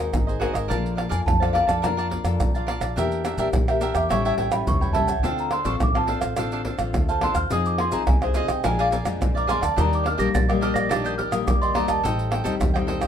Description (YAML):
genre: samba and choro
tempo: 106 BPM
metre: 4/4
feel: straight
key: unclear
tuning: A4 = 440 Hz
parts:
  - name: cavaquinho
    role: accompaniment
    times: 0.0-13.1 s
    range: D4 to A5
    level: -28 LUFS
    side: right 4 dB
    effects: none
  - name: nylon-string guitar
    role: accompaniment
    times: 0.0-13.1 s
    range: F2 to Bb4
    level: -28 LUFS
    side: left 6 dB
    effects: none
  - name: upright bass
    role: bass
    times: 0.0-13.1 s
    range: Ab1 to Bb2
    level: -28 LUFS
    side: equal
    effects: none
  - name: maracas, surdo, pandeiro and tamborim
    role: percussion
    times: 0.1-13.1 s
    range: none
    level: -25 LUFS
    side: right 1 dB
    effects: none
  - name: celesta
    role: melody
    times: 1.1-13.1 s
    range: C5 to Bb6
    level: -25 LUFS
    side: equal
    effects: none
room: moderate studio ambience, RT60 0.5 s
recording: minimal, uncompressed stereo recording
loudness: -20 LUFS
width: side -8 dB against mid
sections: 0.0-13.1 A section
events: celesta solo 0.0-13.1; drum fill 4.5-5.2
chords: 0.0 Ab9; 0.7 Bbmaj7; 3.0 Em7b5; 4.1 A7; 5.2 Dm7; 7.5 Fm7; 8.6 Bb7; 9.8 Ebmaj7; 12.0 Am7b5